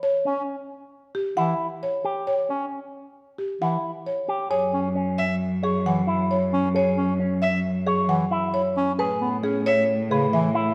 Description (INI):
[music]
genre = classical, minimalist pattern music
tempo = 134 BPM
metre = 5/4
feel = straight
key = F# minor from 4.5 s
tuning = A4 = 441 Hz
[part]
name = buzzing marimba with medium mallets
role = melody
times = 0.0-10.6 s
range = G4 to F#5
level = -28 LUFS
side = equal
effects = none
[part]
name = clear bass clarinet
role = accompaniment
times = 0.3-10.5 s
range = C#3 to C#4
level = -30 LUFS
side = equal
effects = none
[part]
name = electric guitar with an envelope filter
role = arpeggios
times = 0.3-10.7 s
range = C#4 to C#5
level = -30 LUFS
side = equal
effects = none
[part]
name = clear cello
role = bass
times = 4.5-10.7 s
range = F#2 to A2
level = -28 LUFS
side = equal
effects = none
[part]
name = dark violin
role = arpeggios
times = 5.2-9.8 s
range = E5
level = -32 LUFS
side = equal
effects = none
[sound]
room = wet recital hall reverb, RT60 1.5 s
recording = none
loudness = -24 LUFS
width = mono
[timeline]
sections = 0.0-4.5 A section; 4.5-10.7 B section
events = none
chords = 0.0 Em6; 4.5 F#5; 9.0 Amaj9